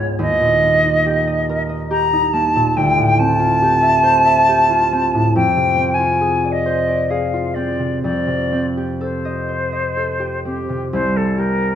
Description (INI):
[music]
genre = classical, impressionist duo for flute and harp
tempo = 61-71 BPM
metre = 3/4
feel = rubato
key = unclear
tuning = A4 = 440 Hz
[part]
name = silver concert flute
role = melody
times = 0.0-11.8 s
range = G4 to Bb5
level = -16 LUFS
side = equal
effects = none
[part]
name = concert harp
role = accompaniment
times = 0.0-11.8 s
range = C2 to E5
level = -19 LUFS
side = right 1 dB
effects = none
[sound]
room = moderate recital hall reverb, RT60 1.6 s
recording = none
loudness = -14 LUFS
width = side -9 dB against mid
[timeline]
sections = 0.0-10.9 A section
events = none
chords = 0.2 Eb; 2.8 Dm11; 5.4 Fm6; 8.0 F9; 10.9 Cm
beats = | 0.21 1.06 1.92 | 2.77 3.62 4.48 | 5.35 6.22 7.10 | 8.03 9.00 9.96 | 10.90